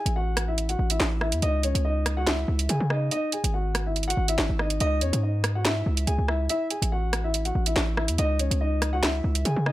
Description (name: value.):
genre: hip hop, drill.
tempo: 142 BPM.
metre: 4/4.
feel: half-time.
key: C# minor.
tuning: A4 = 435 Hz.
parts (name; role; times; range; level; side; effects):
dark concert grand piano; melody; 0.0-9.7 s; C#4 to G#5; -29 LUFS; left 1 dB; none.
hard-hitting 808-style bass; bass; 0.1-9.7 s; G#1 to C#3; -25 LUFS; equal; none.
drill drum kit; drums; 0.1-9.7 s; handclaps, hi-hat, rim click, snare drum; -27 LUFS; right 1 dB; none.
room: little or no reverb.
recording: none.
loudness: -23 LUFS.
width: side -15 dB against mid.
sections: 0.0-9.7 A section.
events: none.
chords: 0.0 A5; 1.4 C#madd9; 3.1 G#5; 4.8 C#madd9; 6.5 A5; 8.2 C#madd9.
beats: 0.16 0.58 1.00 | 1.43 1.85 2.27 2.69 | 3.12 3.54 3.96 4.38 | 4.80 5.23 5.65 6.07 | 6.50 6.92 7.34 7.76 | 8.19 8.61 9.03 9.45.